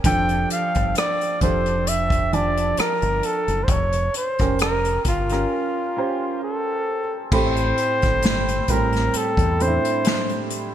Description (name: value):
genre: R&B, neo-soul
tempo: 66 BPM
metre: 4/4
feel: swing 55% on 16ths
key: unclear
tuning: A4 = 441 Hz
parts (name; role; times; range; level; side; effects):
- warm baby grand piano; accompaniment; 0.0-10.7 s; A2 to A5; -25 LUFS; right 3 dB; analog chorus
- deep dub fingered electric bass; bass; 0.0-9.8 s; F1 to E2; -25 LUFS; equal; none
- unplugged drum kit; drums; 0.0-10.7 s; crash cymbal, hi-hat, kick drum, rim click, snare drum; -24 LUFS; left 1 dB; none
- warm flugelhorn; melody; 0.1-10.5 s; F4 to G5; -23 LUFS; equal; none
room: light reverb, studio reverb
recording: bright 1980s-style digital production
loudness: -19 LUFS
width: side -10 dB against mid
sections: 0.0-7.3 A section; 7.3-10.7 B section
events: break 5.5-7.3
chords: 0.0 F69; 3.7 Bbm6/F; 7.3 Am7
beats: | 0.04 0.95 1.86 2.77 | 3.68 4.59 5.50 6.41 | 7.31 8.22 9.13 10.04